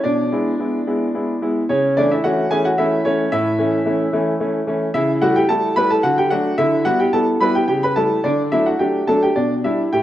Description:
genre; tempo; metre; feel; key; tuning
classical-period piano sonatina; 109 BPM; 3/4; straight; A major, D major from 4.9 s; A4 = 438 Hz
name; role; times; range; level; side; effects
bright grand piano; solo; 0.0-10.0 s; A2 to B5; -16 LUFS; equal; none
room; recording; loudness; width
wet recital hall reverb, RT60 1.6 s; worn, warbling old tape, cassette tape, warbly pitch drift; -16 LUFS; side -13 dB against mid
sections
0.0-10.0 A section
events
none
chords
0.0 E7/B; 1.7 A/C#; 3.3 A; 4.9 A7/C#; 6.0 D; 6.6 Em7/D; 7.7 A7/C#; 8.2 D; 9.4 G/B

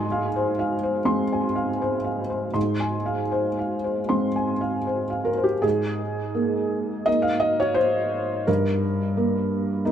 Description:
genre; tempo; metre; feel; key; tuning
neoclassical minimalist piano; 76-88 BPM; 4/4; rubato; Ab major; A4 = 442 Hz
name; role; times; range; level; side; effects
felt-muted upright piano; solo; 0.0-9.9 s; G2 to C6; -22 LUFS; equal; tape echo
room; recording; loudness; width
light reverb; close, detailed microphones; -22 LUFS; side -9 dB against mid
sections
0.0-5.6 A section; 5.6-9.9 B section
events
none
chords
0.0 Fm/Ab; 5.6 Absus2; 8.5 Eb/G (rootless)

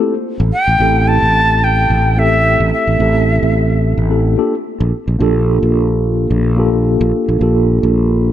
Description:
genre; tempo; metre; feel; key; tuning
sunset chillout; 109 BPM; 4/4; swing 55% on 16ths; G dorian; A4 = 440 Hz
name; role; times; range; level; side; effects
mellow tine electric piano; accompaniment; 0.0-8.3 s; A3 to A4; -16 LUFS; moving between left 5 dB and right 5 dB; medium stereo tremolo, auto-pan, analog delay
sustaining fretless electric bass; bass; 0.4-8.3 s; A1 to Bb1; -14 LUFS; equal; none
jazz flute; melody; 0.5-3.8 s; E5 to A5; -14 LUFS; equal; vintage 12-bit sampler grit, analog delay
room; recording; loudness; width
light reverb, small room reverb; echo-heavy mix; -11 LUFS; side -11 dB against mid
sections
0.0-8.3 A section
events
none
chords
0.0 Am7; 4.4 Gm7/Bb

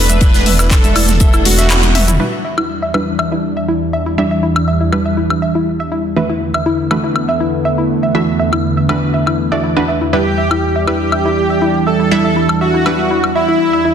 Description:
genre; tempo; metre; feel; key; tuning
progressive house; 121 BPM; 4/4; straight; E minor; A4 = 440 Hz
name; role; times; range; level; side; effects
soft supersaw; melody; 0.0-2.1, 10.1-13.9 s; E4 to B4; -18 LUFS; right 2 dB; sidechain pumping, digital delay
lush unison pad; sustained chords; 0.0-13.9 s; E2 to D4; -17 LUFS; right 1 dB; chorus, phaser, sidechain pumping
round analog bass; bass; 0.0-2.2 s; E1; -15 LUFS; equal; sidechain pumping
analog pluck; arpeggios; 0.1-13.9 s; E4 to E5; -19 LUFS; left 1 dB; chorus, sidechain pumping, digital delay
house drum kit; drums; 0.1-13.3 s; handclaps, hi-hat, toms, woodblock; -19 LUFS; left 3 dB; overdrive, sidechain pumping on hats, small room ambience, sidechain pumping on perc, sidechain pumping on toms
cabasa; percussion; 0.1-2.2 s; none; -24 LUFS; right 3 dB; none
electronic congas and toms; percussion; 0.1-1.9 s; none; -22 LUFS; right 5 dB; overdrive, sidechain pumping on toms, small room ambience, sidechain pumping on perc
electronic kick drum; drums; 0.2-1.3 s; none; -11 LUFS; equal; small room ambience
unplugged drum kit; drums; 0.2-2.1 s; ride cymbal, snare drum; -25 LUFS; left 3 dB; high-pass filter on cymbals, small room ambience, high-pass filter on snare, high-pass filter on room
wide unison pluck; stabs; 2.2-13.9 s; E3 to E5; -19 LUFS; right 2 dB; sidechain pumping, digital delay
airy dreamy lead; second line; 10.1-13.9 s; E4 to A4; -20 LUFS; right 1 dB; chorus, sidechain pumping, digital delay
room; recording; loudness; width
wet scoring stage reverb, RT60 1.5 s, digital ambience; dense, heavily limited modern master; -12 LUFS; side -8 dB against mid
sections
0.0-2.2 A section; 2.2-13.9 B section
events
kick drops out 1.7-2.2; drum fill 1.7-2.2; band accent 1.7; filter sweep on synth pluck 2.2-13.9; filter sweep on analog synth pad 2.2-13.9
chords
0.0 Bm7/E; 2.2 Em7; 6.2 Bm7/E; 10.1 Em7

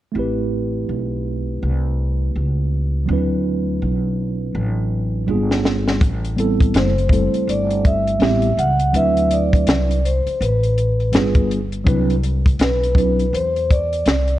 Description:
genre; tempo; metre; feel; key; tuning
hip hop, jazz-hop; 82 BPM; 4/4; swing 61% on 16ths; A dorian; A4 = 440 Hz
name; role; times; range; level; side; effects
mellow tine electric piano; accompaniment; 0.1-13.3 s; F#3 to B4; -22 LUFS; right 2 dB; slow stereo tremolo
upright bass; bass; 0.2-14.4 s; F#1 to E2; -21 LUFS; equal; none
compact cocktail drum kit; drums; 5.5-14.4 s; hi-hat, kick drum, snare drum; -18 LUFS; equal; none
vibraphone with soft mallets; melody; 6.8-14.4 s; B4 to F#5; -20 LUFS; equal; none
room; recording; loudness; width
light reverb; cassette tape; -16 LUFS; side -14 dB against mid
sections
0.2-6.0 A section; 6.0-14.4 B section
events
drum fill 4.5-6.0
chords
0.2 Am9; 3.1 D13; 5.3 G7b9; 6.0 Am9; 8.9 D13; 11.1 G7b9; 11.9 Cmaj9#11

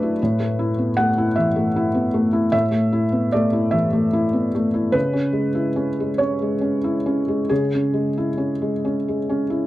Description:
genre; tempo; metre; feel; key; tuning
neoclassical minimalist piano; 44-52 BPM (dotted quarters); 6/8; rubato; A major; A4 = 443 Hz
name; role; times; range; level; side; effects
felt-muted upright piano; solo; 0.0-9.7 s; F#2 to F#5; -18 LUFS; equal; none
room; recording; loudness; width
light reverb; dry, close 1970s-style studio recording; -18 LUFS; side -16 dB against mid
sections
0.0-9.7 A section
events
none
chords
0.2 Asus2; 4.9 C#m

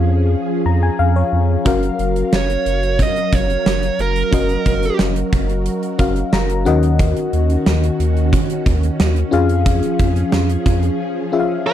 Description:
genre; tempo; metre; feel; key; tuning
1980s-style pop; 90 BPM; 4/4; straight; F# major; A4 = 440 Hz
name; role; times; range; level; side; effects
FM electric piano; accompaniment; 0.0-11.7 s; D#3 to A#5; -20 LUFS; left 6 dB; chorus
string machine, violas; sustained chords; 0.0-11.7 s; D#3 to E#5; -24 LUFS; right 2 dB; phaser, ensemble chorus
round analog bass; bass; 0.0-10.9 s; F#1 to E#2; -18 LUFS; right 1 dB; none
gated 80s drum kit; drums; 1.7-11.0 s; hi-hat, kick drum, snare drum; -18 LUFS; right 1 dB; none
high-gain lead guitar; melody; 2.4-5.0, 11.7 s; A#4 to D#5; -20 LUFS; right 5 dB; distortion, slapback echo
room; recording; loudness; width
little or no reverb; none; -14 LUFS; side -11 dB against mid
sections
0.0-11.7 A section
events
FM electric piano fill 0.3-1.7, 6.0-7.0; break 11.0-11.7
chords
0.0 C#/E#; 1.7 F#maj7; 6.7 D#m7; 9.3 C#/E#

